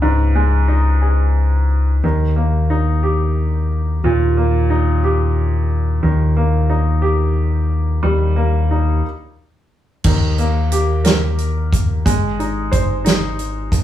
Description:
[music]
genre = six-eight pop ballad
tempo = 60 BPM (dotted quarters)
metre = 6/8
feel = straight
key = unclear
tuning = A4 = 440 Hz
[part]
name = clear baby grand piano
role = accompaniment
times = 0.0-13.8 s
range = Ab2 to C5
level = -20 LUFS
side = right 1 dB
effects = none
[part]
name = fingered electric bass with an envelope filter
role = bass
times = 0.0-13.8 s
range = Ab1 to Eb2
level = -16 LUFS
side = left 1 dB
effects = none
[part]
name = natural country drum kit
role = drums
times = 10.0-13.8 s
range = crash cymbal, hi-hat, kick drum, snare drum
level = -17 LUFS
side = right 1 dB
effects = none
[sound]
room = moderate studio reverb, RT60 0.6 s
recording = band playing live in one room, studio ambience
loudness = -14 LUFS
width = side -12 dB against mid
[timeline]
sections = 0.0-10.0 A section; 10.0-13.8 B section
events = stop 9.0-10.0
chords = 0.0 Dbsus2; 2.0 Eb; 12.1 Ab

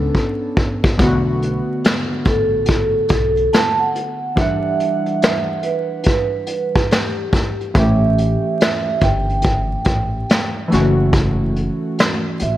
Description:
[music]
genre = lo-fi hip hop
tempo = 71 BPM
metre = 4/4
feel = swing 64% on 16ths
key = B minor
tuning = A4 = 441 Hz
[part]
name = warm analog keys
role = accompaniment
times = 0.0-12.6 s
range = D3 to F#5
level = -22 LUFS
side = equal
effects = chorus, cassette tape, low-pass filter
[part]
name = upright bass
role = bass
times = 0.0-12.6 s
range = F#1 to B1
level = -20 LUFS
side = equal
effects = none
[part]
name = vintage brush drum kit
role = drums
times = 0.1-12.6 s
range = hi-hat, kick drum, snare drum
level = -18 LUFS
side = equal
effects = none
[part]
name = vibraphone with soft mallets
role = melody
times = 2.3-12.6 s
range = G4 to A5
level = -20 LUFS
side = right 3 dB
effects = low-pass filter, analog delay
[sound]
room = light reverb, studio reverb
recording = vinyl crackle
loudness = -15 LUFS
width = side -13 dB against mid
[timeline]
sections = 1.0-12.6 A section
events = break 0.0-1.0; drum fill 0.1-1.0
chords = 0.0 Bm9; 1.0 Bm7; 4.4 Em9; 7.8 A7; 10.7 F#m7

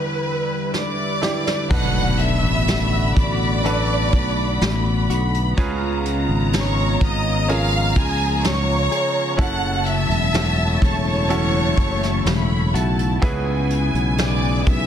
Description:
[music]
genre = pop ballad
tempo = 62 BPM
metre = 4/4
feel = straight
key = B minor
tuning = A4 = 440 Hz
[part]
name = warm studio violin section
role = melody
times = 0.0-14.9 s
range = G#4 to F#6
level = -24 LUFS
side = equal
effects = none
[part]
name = bright grand piano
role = accompaniment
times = 0.0-14.9 s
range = E2 to D5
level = -29 LUFS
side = right 2 dB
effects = none
[part]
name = chorused pulse-width pad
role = sustained chords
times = 0.0-14.9 s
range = D3 to B4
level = -26 LUFS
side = equal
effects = none
[part]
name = vintage brush drum kit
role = drums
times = 0.7-14.9 s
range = crash cymbal, hi-hat, kick drum, snare drum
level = -22 LUFS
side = equal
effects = soft clipping on snare
[part]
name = warm studio violin section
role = second line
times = 1.7-14.9 s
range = G#5 to B5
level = -28 LUFS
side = right 1 dB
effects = none
[part]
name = direct-recorded clean electric guitar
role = arpeggios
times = 1.7-14.9 s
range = F#2 to G#4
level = -29 LUFS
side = left 7 dB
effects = none
[part]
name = sustaining fretless electric bass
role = bass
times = 1.7-14.9 s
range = E1 to C#2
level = -21 LUFS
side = equal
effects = none
[part]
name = impact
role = sound effects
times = 1.7-5.6 s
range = none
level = -27 LUFS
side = equal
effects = none
[sound]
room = light reverb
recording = dense, heavily limited modern master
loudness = -17 LUFS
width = side -9 dB against mid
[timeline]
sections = 0.0-1.7 A section; 1.7-14.9 B section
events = drum fill 0.7-1.7; impact 1.7-5.6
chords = 0.0 Em7; 1.7 Bm7; 5.6 C#7; 9.4 F#m7; 13.2 C#m7

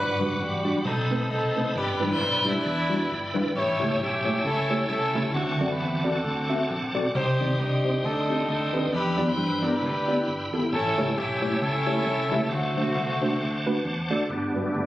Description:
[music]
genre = uptempo gospel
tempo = 134 BPM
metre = 4/4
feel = swing 57% on 8ths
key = unclear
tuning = A4 = 440 Hz
[part]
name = warm horn section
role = melody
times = 0.0-13.9 s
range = A3 to C#5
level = -27 LUFS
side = equal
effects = none
[part]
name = mellow tine electric piano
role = accompaniment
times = 0.0-14.9 s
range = G2 to E5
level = -28 LUFS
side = equal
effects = medium stereo tremolo
[part]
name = bright tonewheel organ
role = sustained chords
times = 0.0-14.9 s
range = G3 to E6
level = -31 LUFS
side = equal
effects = fast rotary speaker, chorus vibrato
[part]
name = fingered electric bass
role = bass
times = 0.0-14.9 s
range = F#1 to G2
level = -31 LUFS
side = equal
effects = none
[sound]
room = moderate echo chamber reverb, RT60 2.0 s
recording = recorded on a phone in the room, club reverb, compression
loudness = -23 LUFS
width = side -15 dB against mid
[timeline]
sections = 0.0-14.3 A section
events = none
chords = 0.0 Gmaj7; 0.9 B7b9; 1.8 Em7/G; 3.5 A7; 5.3 D7; 7.1 Cmadd9; 8.9 Em7; 10.7 A7; 12.5 D7; 14.3 Gmaj7

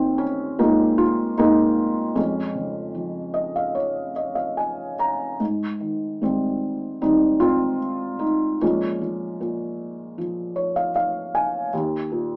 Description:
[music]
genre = classical, lyrical solo piano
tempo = 76 BPM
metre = 4/4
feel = rubato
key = Ab major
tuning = A4 = 441 Hz
[part]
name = felt-muted upright piano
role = solo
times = 0.0-12.4 s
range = Eb2 to Bb5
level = -20 LUFS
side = equal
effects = none
[sound]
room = wet small room reverb, RT60 0.5 s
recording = small speaker sound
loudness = -20 LUFS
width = side -38 dB against mid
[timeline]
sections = 0.0-12.4 A section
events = felt piano fill 2.9-5.4, 10.2-11.7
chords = 0.0 Ebsus4; 2.2 Db/F; 5.4 Abmaj7; 8.6 Bbm7; 11.7 Eb5

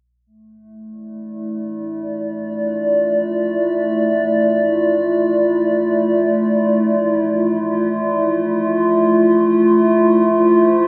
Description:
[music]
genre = ambient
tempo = free time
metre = none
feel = none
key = D minor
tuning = A4 = 437 Hz
[part]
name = warbly tape-like pad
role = sustained chords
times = 1.0-10.9 s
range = A3 to E5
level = -17 LUFS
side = equal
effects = chorus, built-in reverb
[sound]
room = wet cathedral reverb, RT60 6.3 s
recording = in a vast, echoing space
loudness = -17 LUFS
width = mono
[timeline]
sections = 0.3-10.9 A section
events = none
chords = 0.3 Dmadd9

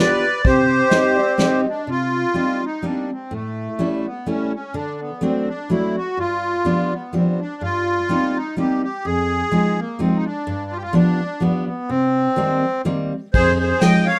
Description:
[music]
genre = musette waltz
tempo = 126 BPM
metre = 3/4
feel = swing 54% on 8ths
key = C minor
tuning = A4 = 440 Hz
[part]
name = accordion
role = melody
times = 0.0-14.2 s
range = A3 to G5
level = -24 LUFS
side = equal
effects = light tremolo tuning
[part]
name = fingerpicked steel-string acoustic guitar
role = accompaniment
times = 0.0-14.1 s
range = F2 to G4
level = -22 LUFS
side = equal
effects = none
[part]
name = vintage brush drum kit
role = drums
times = 0.4-1.5, 13.3-13.9 s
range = hi-hat, kick drum, ride cymbal, snare drum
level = -23 LUFS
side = equal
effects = none
[part]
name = breathy reedy round clay ocarina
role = second line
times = 0.9-1.8 s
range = D5 to Eb5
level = -25 LUFS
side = equal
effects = slapback echo
[sound]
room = moderate studio reverb, RT60 0.6 s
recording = dark, warm production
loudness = -20 LUFS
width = mono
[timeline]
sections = 0.0-1.9 A section; 1.9-13.3 B section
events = none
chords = 0.5 Cm; 1.9 Cm7; 3.3 A7; 4.7 D7; 6.2 G7; 7.6 Cm7/G; 9.1 Fm7; 10.5 G7; 11.9 Cm7; 13.3 Fm7

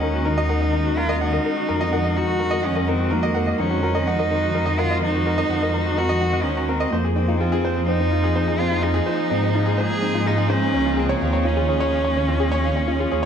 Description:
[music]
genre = piano and strings electronica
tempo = 126 BPM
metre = 4/4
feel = straight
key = Eb dorian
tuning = A4 = 435 Hz
[part]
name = dark cello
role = melody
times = 0.0-13.3 s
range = Bb3 to Ab4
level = -24 LUFS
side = equal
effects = tape echo
[part]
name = muted string quartet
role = sustained chords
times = 0.0-13.3 s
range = Eb3 to C5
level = -29 LUFS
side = right 2 dB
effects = none
[part]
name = soft round pluck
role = arpeggios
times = 0.0-13.1 s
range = C4 to Bb5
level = -30 LUFS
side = left 3 dB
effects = chorus, tape echo
[part]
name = clear grand piano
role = riff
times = 0.0-13.3 s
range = C4 to Gb5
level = -24 LUFS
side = equal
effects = tape echo
[part]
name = dark detuned saw bass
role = bass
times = 0.0-13.3 s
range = Db2 to Ab2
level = -23 LUFS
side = equal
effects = tube saturation
[sound]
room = moderate concert hall reverb, RT60 1.9 s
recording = none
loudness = -18 LUFS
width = side -8 dB against mid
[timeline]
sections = 0.0-13.3 A section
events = none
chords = 0.0 Ebm; 6.9 Fm7; 10.7 Db

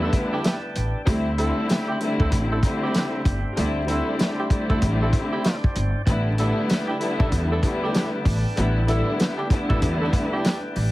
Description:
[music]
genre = hip hop, boom-bap hip-hop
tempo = 96 BPM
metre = 4/4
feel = swing 62% on 16ths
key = A minor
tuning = A4 = 440 Hz
[part]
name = warm studio string section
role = accompaniment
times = 0.0-10.8 s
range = D3 to E4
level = -25 LUFS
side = left 1 dB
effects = high-pass filter, low-pass filter
[part]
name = percussive tonewheel organ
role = sustained chords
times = 0.0-10.9 s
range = D4 to A5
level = -34 LUFS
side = equal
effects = overdrive, slow rotary speaker, high-pass filter, low-pass filter
[part]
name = clear saxophone section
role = stabs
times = 0.0-10.6 s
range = C4 to A4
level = -30 LUFS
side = right 2 dB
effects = high-pass filter, low-pass filter, tape echo
[part]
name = upright bass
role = bass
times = 0.0-10.9 s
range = G1 to E2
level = -24 LUFS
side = equal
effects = none
[part]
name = warm soul drum kit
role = drums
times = 0.1-10.9 s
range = hi-hat, kick drum, snare drum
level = -22 LUFS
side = equal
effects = none
[part]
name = tambourine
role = percussion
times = 0.4-10.6 s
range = none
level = -43 LUFS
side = right 5 dB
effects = none
[sound]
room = light reverb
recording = heavily compressed radio sound, vinyl crackle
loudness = -20 LUFS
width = side -17 dB against mid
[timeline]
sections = 0.0-10.9 A section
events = none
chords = 0.0 A9sus4; 1.1 D9sus4; 6.1 A9sus4

